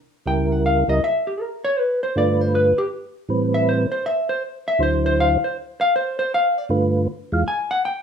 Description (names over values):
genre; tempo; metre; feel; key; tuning
jazz; 159 BPM; 4/4; swing 65% on 8ths; G mixolydian; A4 = 440 Hz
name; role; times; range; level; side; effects
percussive tonewheel organ; melody; 0.3-7.4 s; C#2 to F5; -19 LUFS; right 1 dB; slow rotary speaker, chorus vibrato
vintage hollow-body jazz guitar; accompaniment; 0.3-8.0 s; G4 to G#5; -20 LUFS; left 1 dB; none
room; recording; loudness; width
moderate large studio reverb, RT60 0.9 s; minimal, uncompressed stereo recording; -18 LUFS; side -7 dB against mid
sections
0.0-8.0 A section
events
hollow-body jazz guitar solo 0.0-8.0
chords
0.3 C#dim7; 1.8 G7; 3.3 Am7; 4.8 D7; 6.3 G7; 7.1 E